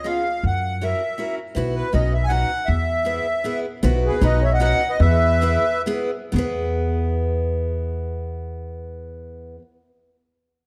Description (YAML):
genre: musette waltz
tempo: 120-161 BPM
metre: 3/4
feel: straight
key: E major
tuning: A4 = 440 Hz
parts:
  - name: accordion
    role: melody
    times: 0.0-5.8 s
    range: B4 to G#5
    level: -25 LUFS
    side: equal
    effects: light tremolo tuning
  - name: picked steel-string acoustic guitar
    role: accompaniment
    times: 0.0-9.6 s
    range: B3 to B4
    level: -30 LUFS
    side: equal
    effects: none
  - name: upright bass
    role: bass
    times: 0.4-9.6 s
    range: B1 to F#2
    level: -24 LUFS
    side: equal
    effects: none
  - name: accordion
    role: second line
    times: 4.1-5.8 s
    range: G#4 to D#5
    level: -28 LUFS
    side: equal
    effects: light tremolo tuning
room: light reverb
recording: dark, warm production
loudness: -21 LUFS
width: mono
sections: 0.0-3.8 A section; 3.8-6.3 B section; 6.3-9.3 C section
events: slowing down 3.8-6.3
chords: 0.4 F#7; 1.6 Bsus4; 1.9 Badd9; 2.7 E; 3.8 Bsus4; 4.2 Badd9; 5.0 E